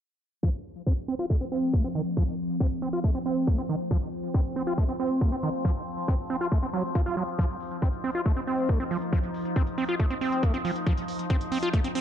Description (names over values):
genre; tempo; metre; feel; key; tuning
psychedelic trance; 138 BPM; 4/4; straight; unclear; A4 = 441 Hz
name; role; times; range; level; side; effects
overtone-sweeping drone; sustained chords; 1.5-12.0 s; F3 to Eb4; -33 LUFS; left 1 dB; chorus, built-in reverb, sidechain pumping
overdriven acid bass; riff; 0.4-12.0 s; Eb3 to F4; -29 LUFS; right 1 dB; distortion, auto-pan, sidechain pumping, digital delay
electronic kick drum; drums; 0.4-11.8 s; none; -26 LUFS; equal; none
electronic hi-hat; drums; 7.4-12.0 s; none; -48 LUFS; right 4 dB; none
room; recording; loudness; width
little or no reverb; dark, warm production, low-pass filter; -25 LUFS; side -9 dB against mid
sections
0.4-12.0 A section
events
filter sweep on acid bass 0.4-12.0; filter sweep 0.4-12.0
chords
0.4 F5